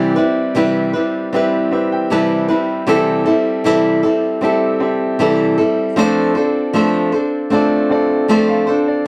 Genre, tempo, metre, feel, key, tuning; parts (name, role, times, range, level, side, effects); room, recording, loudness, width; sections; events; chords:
pop; 78 BPM; 4/4; straight; A4 = 437 Hz
bright concert grand piano; accompaniment; 0.0-9.1 s; C4 to B5; -22 LUFS; equal
flamenco guitar; accompaniment; 0.0-9.1 s; C3 to C5; -17 LUFS; equal
light reverb; dry, close 1970s-style studio recording; -16 LUFS; mono
0.0-9.1 A section
grand piano fill 1.3-2.9
0.0 Cmaj7; 2.9 Am7/C; 6.0 F6